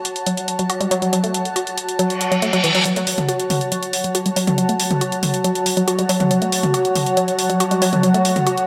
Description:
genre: driving peak-time techno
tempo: 139 BPM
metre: 4/4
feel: straight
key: F# minor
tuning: A4 = 441 Hz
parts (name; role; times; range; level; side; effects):
- techno drum kit; drums; 0.0-8.7 s; hi-hat, toms; -24 LUFS; equal; none
- granular cloud pad; texture; 0.0-8.7 s; F#4 to A5; -26 LUFS; equal; built-in reverb, subtle chorus
- woody wave-folded pluck; riff; 0.3-8.5 s; E3 to F#4; -23 LUFS; equal; chorus, digital delay
- reverse cymbal; sound effects; 2.1-2.9 s; none; -22 LUFS; equal; none
- analog drone; drone; 4.0-8.7 s; F#3 to F#4; -25 LUFS; equal; chorus
room: wet lush hall reverb, RT60 1.9 s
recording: bright 1980s-style digital production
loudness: -19 LUFS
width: mono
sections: 0.0-2.9 A section; 2.9-8.7 B section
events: filter sweep on synth arpeggio sound 0.0-2.9; reverse cymbal 2.1-2.9; build-up 2.9-8.7; filter sweep 2.9-8.7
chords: 0.0 F#m

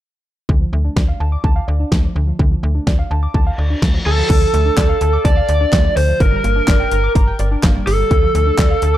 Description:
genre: synth-pop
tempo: 126 BPM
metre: 4/4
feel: straight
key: D minor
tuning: A4 = 440 Hz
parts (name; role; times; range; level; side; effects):
- warbly dusty pluck; arpeggios; 0.5-9.0 s; D3 to D6; -25 LUFS; right 1 dB; chorus, tape echo
- slap-like FM bass; bass; 0.5-9.0 s; G1 to D2; -17 LUFS; equal; none
- pop drum kit; drums; 0.5-8.9 s; crash cymbal, handclaps, hi-hat, kick drum, snare drum; -15 LUFS; equal; none
- reverse cymbal; sound effects; 3.5-4.3 s; none; -26 LUFS; left 1 dB; none
- lead guitar through a small cranked amp; melody; 4.1-9.0 s; A4 to D5; -17 LUFS; right 1 dB; overdrive, tape echo
room: digital ambience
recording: dry, gritty hardware recording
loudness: -13 LUFS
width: side -13 dB against mid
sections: 0.5-4.3 A section; 4.3-9.0 B section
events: reverse cymbal 3.5-4.3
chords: 0.5 Dm; 6.2 Gm; 8.1 Dm

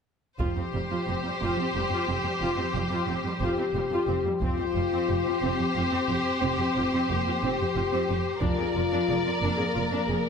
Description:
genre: cinematic, epic orchestral film score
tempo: 60 BPM (dotted quarters)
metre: 6/8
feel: straight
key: unclear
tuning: A4 = 440 Hz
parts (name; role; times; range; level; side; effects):
- rich studio violin section; melody; 0.4-10.3 s; C5 to D5; -34 LUFS; left 3 dB; none
- warm symphonic violin section; second line; 0.4-10.3 s; G4 to Bb4; -32 LUFS; left 3 dB; none
- dark chamber viola section; accompaniment; 0.4-10.1 s; G3 to Ab4; -33 LUFS; right 2 dB; none
- dark symphonic cello section; bass; 0.4-10.2 s; F2; -33 LUFS; right 3 dB; none
- warm symphonic double bass section; bass; 0.4-10.2 s; F1; -33 LUFS; right 4 dB; none
- taiko ensemble; drums; 0.4-9.7 s; none; -32 LUFS; equal; none
- dark French horn section; sustained chords; 3.4-10.3 s; Bb3 to G4; -29 LUFS; left 4 dB; none
room: moderate scoring stage reverb, RT60 2.0 s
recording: none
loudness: -24 LUFS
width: side -6 dB against mid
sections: 0.4-4.4 A section; 4.4-10.3 B section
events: none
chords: 0.4 Fsus2; 8.4 Bb7/F

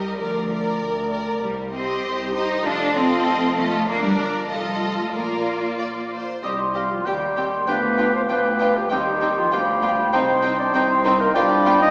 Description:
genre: quick classical-period movement for symphony orchestra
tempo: 97 BPM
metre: 2/4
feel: straight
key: Bb major, C minor from 6.4 s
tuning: A4 = 439 Hz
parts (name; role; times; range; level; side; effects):
- dark symphonic violin section; melody; 0.0-11.7 s; D5 to G5; -34 LUFS; equal; none
- rich chamber violin section; second line; 0.0-11.7 s; Eb4 to D5; -30 LUFS; equal; none
- rich studio viola section; accompaniment; 0.0-11.7 s; B3 to Bb4; -31 LUFS; equal; none
- rich chamber double bass section; bass; 0.0-11.9 s; F1 to Eb2; -35 LUFS; equal; none
- rich studio cello section; bass; 0.0-11.9 s; C2 to Eb4; -29 LUFS; equal; none
- large flute ensemble; second line; 6.4-11.9 s; B5 to D6; -28 LUFS; equal; none
- warm clarinet; second line; 6.4-11.9 s; F4 to Eb5; -25 LUFS; equal; none
- warm oboe; second line; 6.4-11.9 s; Eb5 to G5; -28 LUFS; equal; none
- clear bassoon; accompaniment; 6.4-11.9 s; Eb3 to G3; -30 LUFS; equal; none
- dark French horn section; sustained chords; 6.4-11.9 s; F3 to Eb4; -29 LUFS; equal; none
room: wet recital hall reverb, RT60 1.4 s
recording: recorded in a church or concert hall, small speaker sound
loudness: -21 LUFS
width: mono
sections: 0.0-6.4 A section; 6.4-11.9 B section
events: none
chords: 0.2 Bb/D; 1.4 Cm; 2.6 F7; 3.9 Gm; 4.5 F7; 5.1 Bb; 6.4 Cm; 7.1 Cm/Eb; 7.7 G5/D; 8.9 Cm/Eb; 9.5 G7/D; 10.1 Cm; 11.3 G7/C

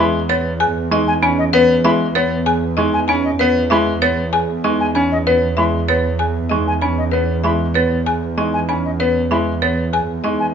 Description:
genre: classical, minimalist pattern music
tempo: 193 BPM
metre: 6/4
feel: straight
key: E major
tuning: A4 = 445 Hz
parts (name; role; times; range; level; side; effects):
- buzzing marimba with hard mallets; melody; 0.0-10.4 s; B4 to G#5; -21 LUFS; left 7 dB; none
- clear grand piano; accompaniment; 0.0-10.4 s; G#3 to C#4; -20 LUFS; left 1 dB; none
- folk marimba with medium hard mallets; arpeggios; 0.0-10.4 s; C#4 to C#5; -21 LUFS; right 7 dB; none
- silver concert flute; arpeggios; 0.0-10.5 s; D#5 to B5; -22 LUFS; left 1 dB; none
- warm studio double bass section; bass; 0.0-10.5 s; E2; -21 LUFS; right 2 dB; none
room: light reverb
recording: nothing above 7.5 kHz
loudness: -14 LUFS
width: side -7 dB against mid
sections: 0.0-10.5 A section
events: none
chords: 0.0 Emaj7

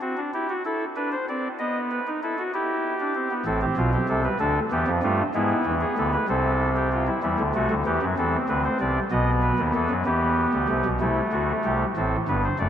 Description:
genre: classical, baroque-style 3-part fugue for pipe organ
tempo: 64 BPM (dotted quarters)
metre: 6/8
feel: straight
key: A minor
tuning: A4 = 437 Hz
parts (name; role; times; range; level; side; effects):
- chamber organ, soft reed; solo; 0.0-12.7 s; F#1 to D#5; -22 LUFS; equal; none
room: wet huge ambient reverb, RT60 7.1 s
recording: in a vast, echoing space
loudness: -22 LUFS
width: side -9 dB against mid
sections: 0.0-11.0 A section; 11.0-12.7 B section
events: none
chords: 0.0 Em; 0.6 Cmaj13; 1.6 B7; 2.5 Em; 3.5 Am; 4.4 Bm7b5/D; 5.3 E7; 6.3 Am/C; 7.2 Em; 8.2 Cmaj13; 9.1 B7; 10.1 Em; 11.0 Am/C; 12.0 F#dim

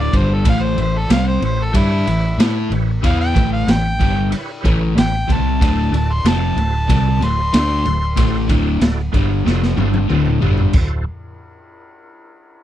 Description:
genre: blues rock power trio and southern rock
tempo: 94 BPM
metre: 4/4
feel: straight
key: D mixolydian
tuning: A4 = 440 Hz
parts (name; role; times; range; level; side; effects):
- mellow harmonica; melody; 0.0-8.5 s; E4 to C6; -22 LUFS; equal; overdrive, slapback echo
- crunchy overdriven guitar; riff; 0.0-10.7 s; D2 to A4; -20 LUFS; left 1 dB; none
- vintage muted fingered electric bass; bass; 0.0-11.0 s; D1 to A2; -19 LUFS; equal; none
- overdriven tonewheel organ; sustained chords; 0.1-11.1 s; E4 to E5; -31 LUFS; right 4 dB; chorus vibrato, fast rotary speaker
- raw garage drum kit; drums; 0.1-10.9 s; crash cymbal, kick drum, ride cymbal, snare drum, toms; -19 LUFS; equal; none
room: little or no reverb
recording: none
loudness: -14 LUFS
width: side -12 dB against mid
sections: 0.0-10.7 A section; 10.7-12.6 B section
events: harmonica solo 0.0-10.7; drum fill 9.5-10.7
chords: 0.5 A7; 5.6 D7

